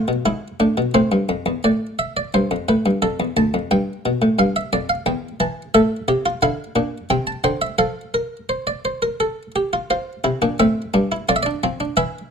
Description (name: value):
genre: classical, baroque-style 3-part fugue for harpsichord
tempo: 87 BPM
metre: 3/4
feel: straight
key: F major from 5.8 s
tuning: A4 = 440 Hz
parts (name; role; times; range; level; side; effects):
- buff-stop harpsichord; solo; 0.0-12.3 s; D2 to A5; -18 LUFS; equal; none
room: light reverb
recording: close, detailed microphones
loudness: -18 LUFS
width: side -6 dB against mid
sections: 0.0-1.6 A section; 1.6-9.9 B section; 9.9-12.3 C section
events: none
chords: 0.0 E7/G#; 0.9 Am; 3.0 Dm; 3.7 G; 5.1 Emadd11; 5.8 Am; 6.4 Dm; 7.1 C; 7.8 F; 11.3 Dm7/F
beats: 0.26 0.95 | 1.65 2.34 3.03 | 3.72 4.40 5.08 | 5.76 6.43 7.11 | 7.80 8.50 9.20 | 9.90 10.60 11.29 | 11.97